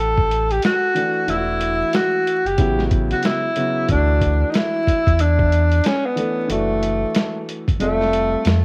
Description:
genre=hip hop, jazz-hop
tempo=92 BPM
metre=4/4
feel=swing 60% on 16ths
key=E dorian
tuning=A4 = 440 Hz
part: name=breathy tenor saxophone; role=melody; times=0.0-8.6 s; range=A3 to A4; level=-22 LUFS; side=equal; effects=cassette tape, tape echo
part: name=sub bass with octave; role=bass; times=0.0-8.6 s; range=E1 to F2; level=-22 LUFS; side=equal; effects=none
part: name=lo-fi sampler-style drum kit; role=drums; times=0.2-8.6 s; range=hi-hat, kick drum, snare drum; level=-24 LUFS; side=equal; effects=cassette tape
part: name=warm baby grand piano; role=accompaniment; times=0.9-8.6 s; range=C#3 to A4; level=-27 LUFS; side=equal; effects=cassette tape
room=light reverb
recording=home recording on cassette, vinyl crackle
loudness=-19 LUFS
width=mono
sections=0.0-8.6 A section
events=kick muted 7.8-8.6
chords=0.0 Gsus2 (rootless); 1.3 Esus2; 2.6 Aadd9; 3.9 Dadd9; 6.5 Em11/F#; 7.8 Fadd9

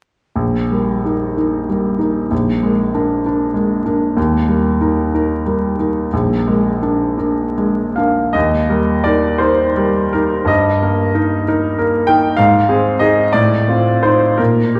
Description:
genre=classical, romantic character piece for solo piano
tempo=48-67 BPM (dotted quarters)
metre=6/8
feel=rubato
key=Eb major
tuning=A4 = 440 Hz
part: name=bright baby grand piano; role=solo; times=0.4-14.8 s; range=Bb1 to G5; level=-16 LUFS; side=equal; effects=none
room=wet recital hall reverb, RT60 1.5 s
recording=heard from further back in the room, vinyl crackle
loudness=-16 LUFS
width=mono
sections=0.4-8.3 A section; 8.3-14.8 B section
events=none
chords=0.4 Eb/Bb; 2.3 Bb7; 4.2 Eb; 6.1 Bb7; 8.3 Eb; 10.5 Eb/G; 12.4 Ab; 13.3 F7/A

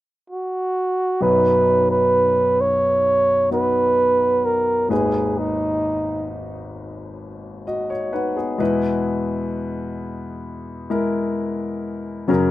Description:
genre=pop ballad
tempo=65 BPM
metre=4/4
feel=straight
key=B major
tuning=A4 = 440 Hz
part: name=breathy flugelhorn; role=melody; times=0.3-6.3 s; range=D#4 to C#5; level=-18 LUFS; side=right 2 dB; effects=none
part: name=clear grand piano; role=accompaniment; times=1.2-12.5 s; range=G#1 to F#5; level=-22 LUFS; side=left 2 dB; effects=none
room=moderate studio reverb, RT60 0.6 s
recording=rough home demo mix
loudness=-18 LUFS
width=side -15 dB against mid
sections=0.0-1.2 A section; 1.2-12.5 B section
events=grand piano fill 7.2-8.6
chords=0.0 N.C.; 1.2 B; 4.9 G#m; 8.6 E

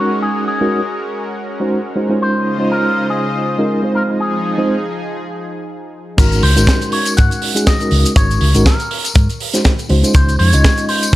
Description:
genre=nu-disco, nu disco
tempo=121 BPM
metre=4/4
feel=swing 56% on 16ths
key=Ab mixolydian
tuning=A4 = 440 Hz
part: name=electric guitar with an envelope filter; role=melody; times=0.0-11.2 s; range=Gb4 to Gb5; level=-21 LUFS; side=left 2 dB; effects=spring reverb, tape echo
part: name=mellow reed electric piano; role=accompaniment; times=0.0-11.2 s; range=Ab3 to Eb5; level=-18 LUFS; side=right 1 dB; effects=fast tremolo, sidechain pumping, slapback echo
part: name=lush unison pad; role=sustained chords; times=0.0-6.2 s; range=Db3 to Eb5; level=-23 LUFS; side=equal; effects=chorus, sidechain pumping
part: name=hollow-body short-scale fingered electric bass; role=bass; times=6.2-11.2 s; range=Ab1 to Ab2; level=-14 LUFS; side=equal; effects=sidechain pumping
part: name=kick drum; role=drums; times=6.2-11.2 s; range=none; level=-12 LUFS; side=equal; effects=none
part: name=tight funk drum kit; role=drums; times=6.2-11.1 s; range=crash cymbal, hi-hat, snare drum, tambourine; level=-20 LUFS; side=right 2 dB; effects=none
part: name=maracas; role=percussion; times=6.2-11.1 s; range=none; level=-28 LUFS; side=left 1 dB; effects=none
room=studio reverb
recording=none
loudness=-12 LUFS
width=side -16 dB against mid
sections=0.0-6.2 A section; 6.2-11.2 B section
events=break 5.7-6.2; drop 6.2-11.2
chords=0.0 Ab9sus4; 2.2 Dbmaj9; 3.9 Fm7; 6.2 Ab9sus4; 10.1 Dbmaj9

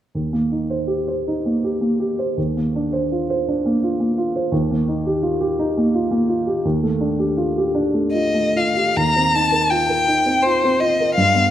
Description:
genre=classical, impressionist duo for violin and grand piano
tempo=70-87 BPM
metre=3/4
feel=rubato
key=Eb lydian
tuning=A4 = 440 Hz
part: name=dark baby grand piano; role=accompaniment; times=0.1-11.5 s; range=Eb2 to C5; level=-19 LUFS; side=right 1 dB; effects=none
part: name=warm violin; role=melody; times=8.1-11.5 s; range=C5 to Bb5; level=-16 LUFS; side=left 2 dB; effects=none
room=moderate concert hall reverb, RT60 2.0 s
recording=none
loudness=-17 LUFS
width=side -11 dB against mid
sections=0.1-9.0 A section; 9.0-11.5 B section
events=none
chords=0.1 Eb6; 2.4 Cm11/Eb; 4.5 Ebadd9; 6.6 F13/Eb; 9.0 Eb69

